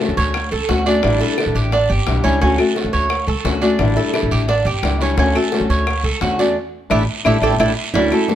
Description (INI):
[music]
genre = latin, Cuban son and guajira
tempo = 174 BPM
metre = 4/4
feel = straight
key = D major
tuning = A4 = 436 Hz
[part]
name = fingerpicked old ladder-braced acoustic guitar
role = accompaniment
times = 0.0-8.3 s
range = D3 to F#4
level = -20 LUFS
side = left 4 dB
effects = none
[part]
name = Cuban tres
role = arpeggios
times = 0.0-8.3 s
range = C#4 to C#5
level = -20 LUFS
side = right 4 dB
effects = none
[part]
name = guiro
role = percussion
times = 0.0-8.3 s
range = none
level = -29 LUFS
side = right 5 dB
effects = none
[part]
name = upright bass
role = bass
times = 0.1-8.1 s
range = G1 to E2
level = -20 LUFS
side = equal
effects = none
[part]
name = bongos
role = percussion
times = 0.3-8.3 s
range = none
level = -28 LUFS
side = left 7 dB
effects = none
[part]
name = claves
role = percussion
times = 0.3-8.3 s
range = none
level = -30 LUFS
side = left 4 dB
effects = none
[part]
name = nylon-string guitar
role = second line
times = 7.9-8.3 s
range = D4 to E4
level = -19 LUFS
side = right 6 dB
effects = none
[sound]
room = light reverb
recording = dark, warm production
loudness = -15 LUFS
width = side -11 dB against mid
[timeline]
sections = 0.0-7.9 A section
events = band accent 6.6-7.9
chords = 0.0 Dmaj7; 1.0 A7sus4; 2.4 Dmaj7; 3.8 A7sus4; 5.2 Dmaj7; 6.6 A7sus4